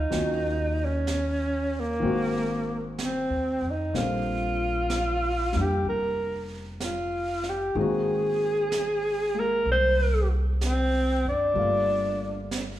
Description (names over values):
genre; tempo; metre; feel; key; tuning
jazz ballad; 63 BPM; 4/4; swing 69% on 8ths; unclear; A4 = 440 Hz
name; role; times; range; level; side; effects
breathy alto saxophone; melody; 0.0-12.5 s; Bb3 to C5; -26 LUFS; equal; none
warm baby grand piano; accompaniment; 0.0-12.8 s; C3 to D5; -32 LUFS; left 3 dB; none
upright bass; bass; 0.0-12.8 s; F1 to F2; -30 LUFS; equal; none
jazz brush drum kit; drums; 0.1-12.8 s; brushed snare drum, hi-hat, snare drum; -38 LUFS; right 3 dB; none
room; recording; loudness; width
wet recital hall reverb, RT60 1.4 s; recorded in a church or concert hall; -24 LUFS; side -13 dB against mid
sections
0.0-12.8 A section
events
none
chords
0.1 Ebm7; 2.0 Ab9; 3.9 Bb6; 7.8 Ab9; 11.6 Gm9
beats
| 0.12 1.07 2.02 2.98 | 3.94 4.90 5.85 6.81 | 7.76 8.71 9.66 10.62 | 11.56 12.52